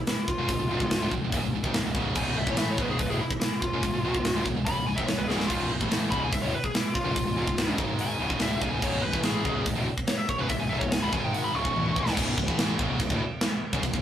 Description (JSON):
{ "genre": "heavy metal", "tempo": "144 BPM", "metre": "4/4", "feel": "straight", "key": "unclear", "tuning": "A4 = 440 Hz", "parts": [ { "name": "high-gain lead guitar", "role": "melody", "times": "0.1-12.2 s", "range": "E4 to C#6", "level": "-30 LUFS", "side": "left 1 dB", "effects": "distortion" }, { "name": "tight metal drum kit", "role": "drums", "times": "0.1-14.0 s", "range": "china cymbal, crash cymbal, hi-hat, kick drum, snare drum, toms", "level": "-28 LUFS", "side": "equal", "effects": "none" }, { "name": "heavy high-gain guitar", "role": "riff", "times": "0.4-14.0 s", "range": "C#2 to A3", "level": "-34 LUFS", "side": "right 6 dB", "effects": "distortion" }, { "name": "tight distorted guitar", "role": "riff", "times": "0.4-14.0 s", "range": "C#2 to A3", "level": "-34 LUFS", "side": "left 5 dB", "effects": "distortion" }, { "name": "fuzz fingered electric bass", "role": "bass", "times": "0.4-14.0 s", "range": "C#1 to A1", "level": "-33 LUFS", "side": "equal", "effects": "overdrive" } ], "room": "light reverb", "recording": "rough rehearsal-room recording", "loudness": "-24 LUFS", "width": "side -10 dB against mid", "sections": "0.0-12.2 A section; 12.2-14.0 B section", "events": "lead electric guitar solo 0.0-12.2; drum fill 5.3, 11.7-12.2", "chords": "0.0 C#; 7.8 G#5; 8.2 C#5; 11.1 G#5; 11.5 C#5" }